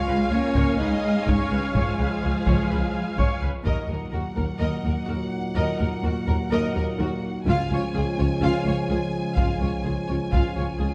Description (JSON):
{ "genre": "cinematic, epic orchestral film score", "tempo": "126 BPM", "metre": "4/4", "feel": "straight", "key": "Eb minor", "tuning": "A4 = 441 Hz", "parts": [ { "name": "rich symphonic violin section", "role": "melody", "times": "0.0-10.9 s", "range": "Gb5 to Ab5", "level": "-39 LUFS", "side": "equal", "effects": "none" }, { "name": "warm symphonic violin section", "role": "second line", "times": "0.0-10.9 s", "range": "Gb4 to F5", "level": "-35 LUFS", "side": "equal", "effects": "none" }, { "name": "rich symphonic viola section", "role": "accompaniment", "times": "0.0-10.9 s", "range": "F4 to F5", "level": "-34 LUFS", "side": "equal", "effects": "none" }, { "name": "mellow French horn section", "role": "sustained chords", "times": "0.0-10.9 s", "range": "Ab3 to F4", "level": "-34 LUFS", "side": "equal", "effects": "none" }, { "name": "dark symphonic cello section", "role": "bass", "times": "0.0-10.9 s", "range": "Db2 to Bb3", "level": "-31 LUFS", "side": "equal", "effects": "none" }, { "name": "rich symphonic double bass section", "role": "bass", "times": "0.1-10.9 s", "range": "Db2 to Eb2", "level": "-30 LUFS", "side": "equal", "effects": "none" }, { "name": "taiko ensemble", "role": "drums", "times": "0.6-4.6, 7.5-10.8 s", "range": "none", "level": "-30 LUFS", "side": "equal", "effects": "none" }, { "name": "dark trombone section", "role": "sustained chords", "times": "3.7-10.9 s", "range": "Bb2 to Gb3", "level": "-32 LUFS", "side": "equal", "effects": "none" } ], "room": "wet scoring stage reverb, RT60 1.9 s", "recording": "dark, warm production", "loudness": "-24 LUFS", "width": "mono", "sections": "0.0-3.7 A section; 3.7-10.9 B section", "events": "none", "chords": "0.0 Db; 3.7 Ebm; 7.5 Db" }